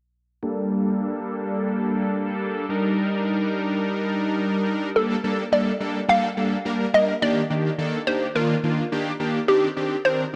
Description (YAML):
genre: pop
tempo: 106 BPM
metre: 4/4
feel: straight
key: G minor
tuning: A4 = 440 Hz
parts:
  - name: big bright polysynth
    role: accompaniment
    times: 0.4-10.3 s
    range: Eb3 to Bb4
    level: -25 LUFS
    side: equal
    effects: chorus, low-pass filter
  - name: hollow square pluck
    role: melody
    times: 5.0-10.4 s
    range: G4 to F5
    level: -25 LUFS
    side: equal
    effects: chorus, tape echo
room: moderate plate reverb, RT60 3.3 s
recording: worn, warbling old tape, cassette tape, warbly pitch drift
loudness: -23 LUFS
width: mono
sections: 0.4-5.0 A section; 5.0-10.4 B section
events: filter sweep on analog polysynth 0.4-5.0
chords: 0.4 Gmadd9; 2.7 Ebmaj7; 5.0 Gmadd9; 7.2 Ebmaj7; 9.5 Cmadd9